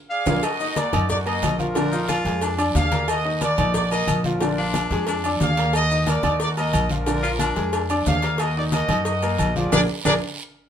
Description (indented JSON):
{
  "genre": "latin, salsa",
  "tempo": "181 BPM",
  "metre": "4/4",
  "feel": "straight",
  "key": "Eb harmonic minor",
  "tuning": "A4 = 441 Hz",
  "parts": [
    { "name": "clear trumpet section", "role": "melody", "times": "0.1-10.1 s", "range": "D4 to F5", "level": "-25 LUFS", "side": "equal", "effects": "none" },
    { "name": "bright upright piano", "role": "accompaniment", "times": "0.3-10.2 s", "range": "D3 to Eb6", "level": "-27 LUFS", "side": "left 1 dB", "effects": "none" },
    { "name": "upright bass", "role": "bass", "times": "0.3-10.2 s", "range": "Bb1 to Gb2", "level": "-25 LUFS", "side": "right 1 dB", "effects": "none" },
    { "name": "bongos and cowbell", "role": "percussion", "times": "0.3-10.1 s", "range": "none", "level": "-32 LUFS", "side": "left 2 dB", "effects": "none" },
    { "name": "congas", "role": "percussion", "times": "0.3-10.1 s", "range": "none", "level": "-29 LUFS", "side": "left 2 dB", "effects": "none" },
    { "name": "guiro", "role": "percussion", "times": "0.3-10.1 s", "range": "none", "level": "-37 LUFS", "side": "right 5 dB", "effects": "none" },
    { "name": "maracas", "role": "percussion", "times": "0.3-10.1 s", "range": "none", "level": "-37 LUFS", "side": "left 5 dB", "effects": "none" },
    { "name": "timbales and agogo bells", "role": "percussion", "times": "0.3-10.1 s", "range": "none", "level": "-28 LUFS", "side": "equal", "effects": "none" },
    { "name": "bright baritone saxophone", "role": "second line", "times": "1.9-10.1 s", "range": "D4 to F4", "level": "-28 LUFS", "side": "left 3 dB", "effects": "none" }
  ],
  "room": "moderate studio reverb, RT60 0.8 s",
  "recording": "minimal, uncompressed stereo recording",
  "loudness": "-19 LUFS",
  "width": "side -9 dB against mid",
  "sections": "0.4-10.7 A section",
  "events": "drum fill 0.0-0.4, 9.7-10.7; band accent 0.0-0.4, 9.7-10.7",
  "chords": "0.4 Ebm; 1.8 Bb7; 3.1 Ebm; 4.4 Bb7; 5.7 Ebm; 7.1 Bb7; 8.4 Ebm; 9.7 Bb7",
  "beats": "0.10 | 0.43 0.76 1.09 1.42 | 1.76 2.09 2.42 2.75 | 3.08 3.42 3.75 4.08 | 4.41 4.74 5.07 5.41 | 5.74 6.07 6.40 6.73 | 7.07 7.40 7.73 8.06 | 8.39 8.73 9.06 9.39 | 9.72 10.06"
}